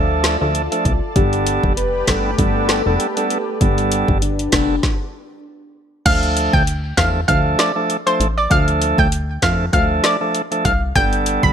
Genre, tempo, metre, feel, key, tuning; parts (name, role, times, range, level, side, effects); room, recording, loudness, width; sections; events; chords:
dancehall; 98 BPM; 4/4; swing 56% on 16ths; D dorian; A4 = 441 Hz
bright tonewheel organ; accompaniment; 0.0-11.5 s; F3 to A4; -20 LUFS; right 2 dB; overdrive, stopped rotary speaker
lush unison pad; sustained chords; 0.0-4.8 s; F4 to A5; -27 LUFS; equal; chorus, phaser, sidechain pumping
plucky analog bass; bass; 0.0-11.5 s; F1 to F2; -20 LUFS; equal
deep house drum kit; drums; 0.2-11.5 s; crash cymbal, hi-hat, kick drum, rim click, snare drum; -20 LUFS; equal
soft octave-layered synth lead; second line; 1.2-4.8 s; D4 to B4; -23 LUFS; left 3 dB; chorus, phaser, digital delay
analog pluck; melody; 6.1-11.5 s; C5 to B5; -20 LUFS; equal; chorus
light reverb; bright 1980s-style digital production; -15 LUFS; side -8 dB against mid
0.0-6.1 A section; 6.1-11.5 B section
stop 4.8-6.1
0.0 Dm; 1.2 Gadd9; 6.1 Dm; 11.0 Gadd9